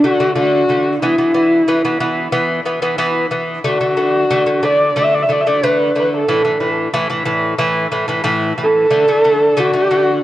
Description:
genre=mongolian traditional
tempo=91 BPM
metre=4/4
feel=straight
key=D gong mode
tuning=A4 = 440 Hz
part: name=warm horsehead fiddle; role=melody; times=0.0-10.2 s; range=E4 to E5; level=-15 LUFS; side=equal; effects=none
part: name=lute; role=arpeggios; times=0.0-10.2 s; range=A2 to B3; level=-16 LUFS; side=equal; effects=none
room=moderate huge ambient reverb, RT60 9.3 s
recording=worn, warbling old tape, cassette tape, warbly pitch drift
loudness=-13 LUFS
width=side -14 dB against mid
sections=0.0-10.2 A section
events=none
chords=0.0 D5; 1.0 E5; 3.7 D5; 6.3 A5; 8.9 D5

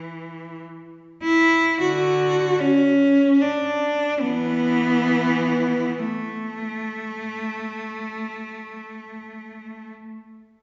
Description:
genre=classical, free, expressive piece for unaccompanied cello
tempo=free time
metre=none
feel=none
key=unclear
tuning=A4 = 440 Hz
part: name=clear cello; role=solo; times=0.0-9.9 s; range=D3 to F#4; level=-23 LUFS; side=equal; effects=none
room=wet recital hall reverb, RT60 1.7 s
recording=recorded in a church or concert hall, nothing above 7.8 kHz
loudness=-21 LUFS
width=mono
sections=0.0-10.6 A section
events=none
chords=none

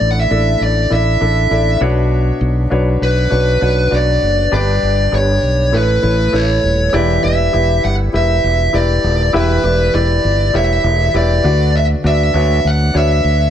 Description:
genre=piano-driven pop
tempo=100 BPM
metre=4/4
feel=swing 56% on 16ths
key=unclear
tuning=A4 = 442 Hz
part: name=fuzz lead guitar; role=melody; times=0.0-13.5 s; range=B4 to F#5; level=-17 LUFS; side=equal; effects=distortion
part: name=felt-muted upright piano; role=accompaniment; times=0.0-13.5 s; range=G2 to E5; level=-18 LUFS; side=left 1 dB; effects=none
part: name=fingered electric bass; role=bass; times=0.0-13.5 s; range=D#1 to D2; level=-15 LUFS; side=equal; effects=none
room=small room reverb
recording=none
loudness=-12 LUFS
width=side -10 dB against mid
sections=0.0-6.9 A section; 6.9-13.5 B section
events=none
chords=0.0 Asus4; 1.8 Bmadd9; 4.5 G; 5.7 Aadd9; 6.9 Em7; 11.4 Bmadd9

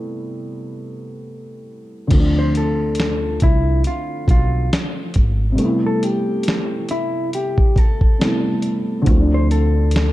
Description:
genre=lo-fi hip hop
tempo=69 BPM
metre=4/4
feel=swing 59% on 16ths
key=unclear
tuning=A4 = 443 Hz
part: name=felt-muted upright piano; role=accompaniment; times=0.0-10.1 s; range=C3 to E4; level=-22 LUFS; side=equal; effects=low-pass filter
part: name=upright bass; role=bass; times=2.1-10.1 s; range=G#1 to D2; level=-18 LUFS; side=equal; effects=none
part: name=dusty soul sampler-style drum kit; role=drums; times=2.1-10.1 s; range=crash cymbal, hi-hat, kick drum, snare drum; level=-18 LUFS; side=equal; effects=none
part: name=mellow electric guitar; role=melody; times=2.4-10.1 s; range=E4 to C5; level=-24 LUFS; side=left 2 dB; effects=low-pass filter
room=light reverb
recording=dark, warm production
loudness=-15 LUFS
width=side -16 dB against mid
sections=0.0-2.1 A section; 2.1-10.1 B section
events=break 0.0-2.1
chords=0.0 Am9; 2.1 Dm7; 5.6 Am9; 9.1 Dm7

